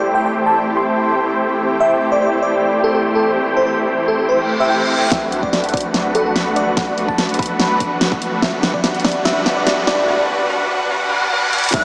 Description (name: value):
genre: future bass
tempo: 145 BPM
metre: 4/4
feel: half-time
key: unclear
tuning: A4 = 440 Hz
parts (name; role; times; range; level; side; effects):
- bell-like FM electric piano; melody; 0.0-11.8 s; A4 to C6; -22 LUFS; equal; chorus, tremolo, sidechain pumping, tape echo
- shimmering ambient pad; sustained chords; 0.0-10.1 s; D3 to G4; -29 LUFS; equal; chorus, built-in reverb, sidechain pumping
- supersaw chords; riff; 0.0-11.8 s; G3 to G5; -21 LUFS; equal; cassette tape, sidechain pumping, low-pass filter, tape echo
- reverse cymbal, riser and impact; sound effects; 4.4-11.8 s; none; -29 LUFS; equal; none
- long sustained 808-style bass; bass; 5.1-11.8 s; G1 to B1; -38 LUFS; equal; sidechain pumping
- electronic kick drum; drums; 5.1-9.1, 11.7-11.8 s; none; -26 LUFS; equal; none
- pop drum kit; drums; 5.1-11.8 s; crash cymbal, hi-hat, snare drum; -23 LUFS; equal; low-pass filter on snare, low-pass filter on hats, low-pass filter on cymbals
- unison pluck; arpeggios; 11.7-11.8 s; F#6; -21 LUFS; equal; sidechain pumping
room: wet cathedral reverb, RT60 5.7 s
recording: dreamy mix soaked in reverb, high-pass filter, small speaker sound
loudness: -17 LUFS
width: mono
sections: 0.0-5.1 A section; 5.1-11.7 B section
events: reverse cymbal 4.4-5.1, 11.0-11.7; build-up 5.1-11.7; drum fill 5.1-10.1, 11.5; filter sweep on supersaw synth 5.1-11.7; filter sweep 5.1-11.7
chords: 0.0 Am7; 5.1 Bm7; 8.4 Gmaj7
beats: | 0.15 0.56 0.98 1.39 | 1.81 2.22 2.63 3.05 | 3.46 3.88 4.29 4.70 | 5.12 5.53 5.94 6.36 | 6.77 7.18 7.60 8.01 | 8.43 8.84 9.25 9.67 | 10.08 10.50 10.91 11.32 | 11.74